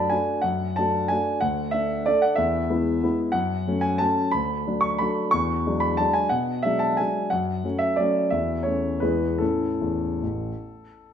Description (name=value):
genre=classical, piano waltz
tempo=144-196 BPM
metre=3/4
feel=rubato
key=A major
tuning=A4 = 440 Hz
part: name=warm concert grand piano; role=solo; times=0.0-11.1 s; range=A1 to C#6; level=-21 LUFS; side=equal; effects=none
room=wet recital hall reverb, RT60 1.4 s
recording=none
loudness=-21 LUFS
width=side -8 dB against mid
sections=0.0-11.1 A section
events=none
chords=0.0 D/F#; 1.4 D; 2.4 E; 3.4 F#m; 4.3 Bm7/D; 5.3 E13; 7.3 F#m; 8.3 A/E; 9.0 E; 9.4 A